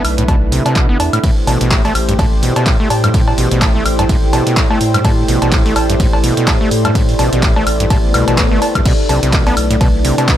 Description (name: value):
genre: acid house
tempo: 126 BPM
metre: 4/4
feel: swing 57% on 16ths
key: unclear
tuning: A4 = 440 Hz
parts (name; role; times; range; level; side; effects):
- warm analog pad; sustained chords; 0.0-10.4 s; A3 to C5; -22 LUFS; left 3 dB; chorus, sidechain pumping
- overdriven acid bass; riff; 0.0-10.4 s; G2 to B3; -18 LUFS; equal; distortion, sidechain pumping, tape echo
- saturated sub bass; bass; 0.0-10.1 s; F#1 to A2; -18 LUFS; equal; sidechain pumping
- punchy analog drum machine; drums; 0.0-10.4 s; cowbell, crash cymbal, handclaps, hi-hat, ride cymbal, woodblock; -18 LUFS; equal; none
- warbly tape-like pad; texture; 0.0-10.4 s; E4 to G5; -20 LUFS; right 3 dB; chorus, built-in reverb, sidechain pumping
- electronic kick drum; drums; 0.3-10.4 s; none; -15 LUFS; equal; none
- swell; sound effects; 8.1-8.9 s; none; -23 LUFS; left 4 dB; none
room: little or no reverb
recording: none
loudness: -11 LUFS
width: side -12 dB against mid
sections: 0.0-10.4 A section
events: swell 8.1-8.9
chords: 0.0 Bm7; 1.2 Am7; 8.9 Bm7